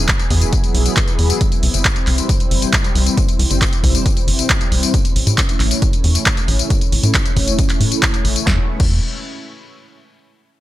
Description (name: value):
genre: uplifting trance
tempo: 136 BPM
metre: 4/4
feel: straight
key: unclear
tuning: A4 = 440 Hz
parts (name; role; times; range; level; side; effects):
- tight sequencer bass; bass; 0.0-9.0 s; E1 to A2; -16 LUFS; equal; sidechain pumping
- electronic kick drum; drums; 0.1-8.9 s; none; -17 LUFS; equal; none
- punchy analog drum machine; drums; 0.1-8.9 s; crash cymbal, handclaps, hi-hat, snare drum, tambourine; -19 LUFS; left 1 dB; none
room: little or no reverb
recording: none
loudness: -13 LUFS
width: side -15 dB against mid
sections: 0.0-8.5 A section; 8.5-10.2 B section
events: filter sweep on analog synth bass 0.0-8.5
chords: none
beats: 0.09 0.53 0.97 | 1.41 1.85 2.29 2.73 | 3.17 3.62 4.06 4.50 | 4.94 5.38 5.82 6.26 | 6.70 7.14 7.59 8.03 | 8.47 8.91